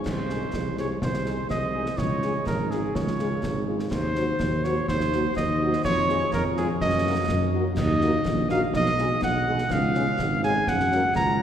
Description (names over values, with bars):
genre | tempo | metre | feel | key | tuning
military-style march for wind band | 124 BPM | 2/4 | straight | Db major, F# major from 7.8 s | A4 = 440 Hz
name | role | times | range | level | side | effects
warm cornet | melody | 0.1-11.4 s | Ab4 to A#5 | -26 LUFS | right 1 dB | none
mellow tuba | bass | 0.1-11.4 s | Ab1 to Gb2 | -26 LUFS | right 1 dB | none
concert snare drum, clash cymbals and concert bass drum | drums | 0.1-11.3 s | none | -31 LUFS | equal | none
dark French horn section | accompaniment | 0.3-11.4 s | Gb3 to C5 | -32 LUFS | left 2 dB | none
room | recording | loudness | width
wet cathedral reverb, RT60 4.5 s | recorded in a church or concert hall | -22 LUFS | side -9 dB against mid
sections
0.1-11.4 A section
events
none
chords
0.1 Ab/C; 2.0 Db; 3.9 Cdim/Eb; 5.8 Db/F; 6.8 Ebm/Gb; 7.8 D#m; 8.7 G#m7/B; 9.7 C#; 10.7 F#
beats
| 0.06 0.54 | 1.02 1.51 | 1.99 2.47 | 2.95 3.44 | 3.92 4.40 | 4.88 5.36 | 5.85 6.33 | 6.81 7.29 | 7.78 8.26 | 8.74 9.22 | 9.71 10.19 | 10.67 11.15